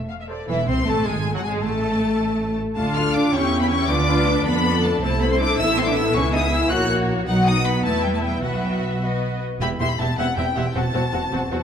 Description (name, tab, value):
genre	quick classical-period movement for string orchestra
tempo	106 BPM (dotted quarters)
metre	6/8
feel	straight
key	E minor from 5.0 s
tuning	A4 = 440 Hz
part	warm symphonic double bass section	bass	0.0-11.6 s	E1 to F2	-25 LUFS	right 2 dB	none
part	rich symphonic violin section	second line	0.1-11.6 s	E4 to G5	-26 LUFS	left 3 dB	none
part	clear symphonic viola section	accompaniment	0.3-11.6 s	E3 to C5	-26 LUFS	left 1 dB	none
part	rich studio violin section	melody	0.5-11.6 s	E5 to F#6	-25 LUFS	left 3 dB	none
part	rich symphonic cello section	bass	0.5-11.6 s	E2 to F#4	-25 LUFS	right 1 dB	none
room	wet recital hall reverb, RT60 1.8 s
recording	dark, warm production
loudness	-18 LUFS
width	side -8 dB against mid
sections	0.5-9.6 A section; 9.6-11.6 B section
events	none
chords	0.5 Am/E; 1.1 F#sus2; 1.6 N.C.; 2.8 Dm; 3.3 C#dim/E; 3.9 Dm; 5.0 Am/C; 6.2 F#7/C#; 7.3 B; 7.8 Em; 8.4 Bsus4; 9.6 Em; 10.2 C; 10.8 F#dim/E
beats	| 0.49 1.06 | 1.63 2.20 | 2.77 3.33 | 3.90 4.46 | 5.03 5.59 | 6.15 6.71 | 7.28 7.85 | 8.43 9.02 | 9.61 10.18 | 10.76 11.33